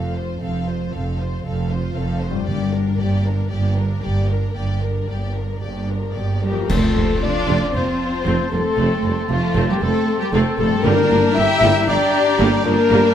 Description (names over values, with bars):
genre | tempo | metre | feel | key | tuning
cinematic, heroic adventure film score | 116 BPM | 4/4 | straight | unclear | A4 = 439 Hz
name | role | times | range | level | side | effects
warm studio violin section | melody | 0.0-13.1 s | F4 to F5 | -28 LUFS | left 4 dB | none
warm symphonic violin section | second line | 0.0-13.1 s | A3 to C5 | -28 LUFS | left 4 dB | none
clear symphonic viola section | accompaniment | 0.0-13.1 s | F3 to F4 | -27 LUFS | right 2 dB | none
concert harp | arpeggios | 0.0-13.1 s | F2 to C5 | -29 LUFS | left 10 dB | none
rich symphonic cello section | bass | 0.0-13.1 s | F2 to E4 | -24 LUFS | right 2 dB | none
rich symphonic double bass section | bass | 0.0-13.0 s | F1 to G1 | -23 LUFS | right 2 dB | none
cymbal swell, clash cymbals and concert bass drum | percussion | 2.5-7.7 s | none | -26 LUFS | equal | none
timpani | percussion | 2.5-3.2, 10.8-11.6 s | G2 | -28 LUFS | equal | none
mellow French horn section | sustained chords | 6.4-13.1 s | F4 to E5 | -22 LUFS | left 4 dB | none
dark trumpet section | stabs | 6.4-13.1 s | F4 to E5 | -27 LUFS | equal | none
clear oboe | second line | 6.7-13.1 s | G5 to A5 | -31 LUFS | right 2 dB | none
silver concert flute | second line | 6.7-13.1 s | Bb5 to C6 | -30 LUFS | left 2 dB | none
mellow tuba | bass | 6.7-13.0 s | F1 to G1 | -25 LUFS | right 3 dB | none
room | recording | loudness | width
moderate scoring stage reverb, RT60 1.8 s | none | -17 LUFS | side -9 dB against mid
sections
0.0-6.7 A section; 6.7-13.1 B section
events
band accent 6.7-7.2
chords
0.0 F; 2.5 Gm; 6.7 F; 10.9 Gm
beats
| 0.41 0.93 1.45 1.97 | 2.49 3.00 3.52 4.03 | 4.56 5.09 5.63 6.16 | 6.69 7.22 7.74 8.26 | 8.78 9.30 9.82 10.34 | 10.85 11.37 11.88 12.40 | 12.92